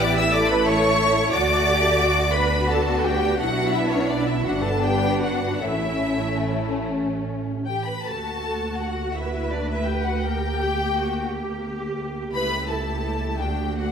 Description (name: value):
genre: classical, slow romantic movement for string orchestra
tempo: 48-62 BPM (dotted quarters)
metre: 6/8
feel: rubato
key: D major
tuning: A4 = 441 Hz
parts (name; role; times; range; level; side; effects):
- clear studio violin section; melody; 0.0-13.9 s; C#5 to E6; -26 LUFS; left 3 dB; none
- dark symphonic violin section; second line; 0.0-13.9 s; A3 to B4; -26 LUFS; left 2 dB; none
- clear symphonic viola section; accompaniment; 0.0-13.9 s; A3 to E5; -26 LUFS; right 1 dB; none
- rich symphonic cello section; bass; 0.0-13.9 s; C#4 to B4; -30 LUFS; right 2 dB; none
- rich symphonic double bass section; bass; 0.0-13.9 s; G1 to D2; -27 LUFS; right 3 dB; none
room: wet scoring stage reverb, RT60 1.5 s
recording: none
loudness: -20 LUFS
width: side -7 dB against mid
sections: 0.0-8.1 A section; 8.1-13.9 B section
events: none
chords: 0.0 A7; 1.3 D; 3.4 Bm; 4.5 G; 5.6 A; 8.1 D; 10.2 Gm/D; 12.3 A7/C#; 13.4 D